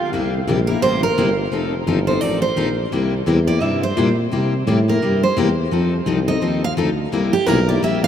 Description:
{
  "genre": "acoustic string swing (jazz manouche)",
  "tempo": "171 BPM",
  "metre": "4/4",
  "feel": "swing 61% on 8ths",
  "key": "C mixolydian",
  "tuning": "A4 = 439 Hz",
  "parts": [
    { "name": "picked steel-string acoustic guitar", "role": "second line", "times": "0.0-8.1 s", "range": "G4 to F5", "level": "-22 LUFS", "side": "right 4 dB", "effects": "none" },
    { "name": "picked steel-string acoustic guitar", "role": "accompaniment", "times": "0.1-8.0 s", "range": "C3 to A4", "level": "-20 LUFS", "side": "left 4 dB", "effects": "none" },
    { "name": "mellow tuba", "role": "bass", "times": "0.1-8.1 s", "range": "F1 to C3", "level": "-20 LUFS", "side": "equal", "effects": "none" }
  ],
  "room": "wet huge ambient reverb, RT60 8.1 s",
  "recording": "in a vast, echoing space",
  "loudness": "-16 LUFS",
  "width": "side -9 dB against mid",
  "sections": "0.1-8.1 A section",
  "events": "steel-string acoustic guitar solo 0.1-8.1",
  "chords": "0.1 C7; 1.5 F7; 2.9 C7; 5.7 F7; 7.1 C7"
}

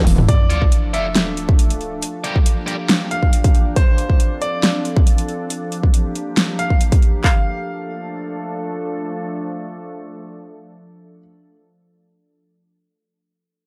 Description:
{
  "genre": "heavy wobble dubstep",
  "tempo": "138 BPM",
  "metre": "4/4",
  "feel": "half-time",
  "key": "D minor",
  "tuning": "A4 = 441 Hz",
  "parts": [
    { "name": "evolving wavetable pad", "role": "sustained chords", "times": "0.0-11.2 s", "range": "F3 to A4", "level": "-29 LUFS", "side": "equal", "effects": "chorus, built-in reverb, sidechain pumping" },
    { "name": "dubstep drum kit", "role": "drums", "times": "0.1-7.1 s", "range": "hi-hat, snare drum, toms", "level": "-22 LUFS", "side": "equal", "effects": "none" },
    { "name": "bright grand piano", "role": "melody", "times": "0.3-11.2 s", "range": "C5 to F5", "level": "-28 LUFS", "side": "equal", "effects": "tape echo" },
    { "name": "dubstep drum kit", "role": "drums", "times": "0.3-7.3 s", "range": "handclaps, kick drum", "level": "-16 LUFS", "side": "equal", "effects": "none" },
    { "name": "sub drop", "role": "sound effects", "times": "0.3-2.0 s", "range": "none", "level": "-25 LUFS", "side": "equal", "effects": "none" },
    { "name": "sludgy distorted guitar", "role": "stabs", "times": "0.5-2.7 s", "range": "F4 to D5", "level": "-31 LUFS", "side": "equal", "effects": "overdrive, tape echo" }
  ],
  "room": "light reverb",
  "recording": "dark, warm production",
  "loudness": "-18 LUFS",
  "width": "mono",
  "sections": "0.3-7.2 A section; 7.2-10.7 B section",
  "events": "drum fill 0.0; impact 0.3-2.0",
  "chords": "0.3 Dm; 2.0 Bb6; 3.8 F6; 5.5 Gm7; 7.2 Dm"
}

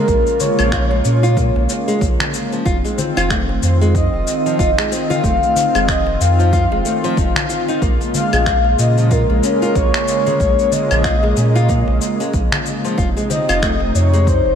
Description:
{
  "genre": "organic downtempo",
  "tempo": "93 BPM",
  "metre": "4/4",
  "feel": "swing 58% on 16ths",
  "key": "Bb minor",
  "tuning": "A4 = 442 Hz",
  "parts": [
    { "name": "breathy flute-like synth lead", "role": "melody", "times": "0.0-14.6 s", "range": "Bb4 to F5", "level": "-20 LUFS", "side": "left 1 dB", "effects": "lush chorus, ping-pong delay" },
    { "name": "warm analog pad", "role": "sustained chords", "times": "0.0-14.6 s", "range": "C3 to F4", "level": "-21 LUFS", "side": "right 1 dB", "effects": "chorus, sidechain pumping" },
    { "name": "nylon-string guitar", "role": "arpeggios", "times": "0.0-14.3 s", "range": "F3 to F4", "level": "-23 LUFS", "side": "left 1 dB", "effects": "diffuse ambient delay" },
    { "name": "warm sub bass", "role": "bass", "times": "0.1-14.6 s", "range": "F1 to Bb2", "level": "-17 LUFS", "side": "equal", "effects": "sidechain pumping" },
    { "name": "electronic kick drum", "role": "drums", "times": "0.1-14.4 s", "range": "none", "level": "-21 LUFS", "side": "equal", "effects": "overdrive" },
    { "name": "electronic shaker, claves and finger snaps", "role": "drums", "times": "0.1-14.4 s", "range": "none", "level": "-23 LUFS", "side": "left 2 dB", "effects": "overdrive" },
    { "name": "darbuka", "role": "percussion", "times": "0.4-14.6 s", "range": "none", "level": "-29 LUFS", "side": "left 4 dB", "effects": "none" }
  ],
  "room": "moderate lush hall reverb, RT60 1.9 s, digital ambience",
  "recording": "dreamy mix soaked in reverb",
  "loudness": "-13 LUFS",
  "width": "side -8 dB against mid",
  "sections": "0.0-14.6 A section",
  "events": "none",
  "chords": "0.0 Bbm7; 2.7 F7(no3); 7.8 Bbm7; 13.0 F7(no3)"
}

